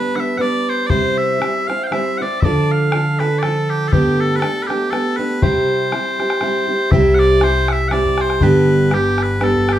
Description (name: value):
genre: celtic folk, Celtic waltz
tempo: 120 BPM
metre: 3/4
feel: swing 55% on 8ths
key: C major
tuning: A4 = 440 Hz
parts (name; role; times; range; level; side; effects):
- loud bright bagpipes; melody; 0.0-9.8 s; G4 to G5; -21 LUFS; equal; plate reverb
- fingerpicked plugged-in steel-string acoustic guitar; accompaniment; 0.0-9.8 s; G2 to C5; -16 LUFS; right 1 dB; none
- bodhran; percussion; 0.9-9.8 s; none; -20 LUFS; left 2 dB; none
- upright bass; bass; 6.9-9.8 s; G1 to C2; -20 LUFS; left 1 dB; none
room: wet studio ambience, RT60 0.5 s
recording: heard from further back in the room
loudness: -14 LUFS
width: side -12 dB against mid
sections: 0.0-6.9 A section; 6.9-9.8 B section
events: none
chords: 0.0 G; 0.9 C; 2.4 Dm; 3.9 Gadd9; 5.4 C; 8.4 G